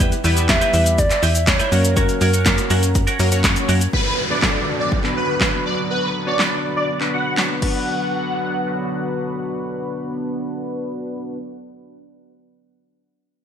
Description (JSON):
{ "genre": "dance-pop", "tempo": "122 BPM", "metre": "4/4", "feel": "straight", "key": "B minor", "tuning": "A4 = 440 Hz", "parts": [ { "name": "chorused polysynth", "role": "accompaniment", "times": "0.0-11.4 s", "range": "F#3 to C#5", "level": "-25 LUFS", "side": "left 1 dB", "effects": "sidechain pumping, low-pass filter" }, { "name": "twelve-string electric guitar", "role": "riff", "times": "0.0-3.9 s", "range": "C#4 to B4", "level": "-26 LUFS", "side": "right 3 dB", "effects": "analog chorus" }, { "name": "slap-like FM bass", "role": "bass", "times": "0.0-3.9 s", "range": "E2 to F#2", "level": "-18 LUFS", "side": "equal", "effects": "sidechain pumping" }, { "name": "punchy analog drum machine", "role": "drums", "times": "0.0-7.7 s", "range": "crash cymbal, handclaps, hi-hat, kick drum, shaker, snare drum", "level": "-20 LUFS", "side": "equal", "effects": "gated reverb" }, { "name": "hollow clarinet-like synth lead", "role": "melody", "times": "0.5-3.4 s", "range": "A#4 to E5", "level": "-22 LUFS", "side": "right 1 dB", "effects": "chorus, ping-pong delay" }, { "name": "soft supersaw", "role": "melody", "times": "3.9-9.3 s", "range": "B4 to F#5", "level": "-23 LUFS", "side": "equal", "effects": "ensemble chorus, sidechain pumping, low-pass filter, ping-pong delay" }, { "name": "chorused pulse-width pad", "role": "sustained chords", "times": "3.9-11.4 s", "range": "D3 to F#4", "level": "-28 LUFS", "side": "equal", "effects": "sidechain pumping, low-pass filter" }, { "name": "downlifter", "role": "sound effects", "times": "3.9-7.9 s", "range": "none", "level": "-27 LUFS", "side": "right 1 dB", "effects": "none" } ], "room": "moderate lush hall reverb, RT60 2.4 s", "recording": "bright 1980s-style digital production", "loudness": "-17 LUFS", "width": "side -8 dB against mid", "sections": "0.0-3.9 A section; 3.9-7.9 B section; 7.9-11.8 C section", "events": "none", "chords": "0.0 Em; 1.7 F#; 3.9 Bm" }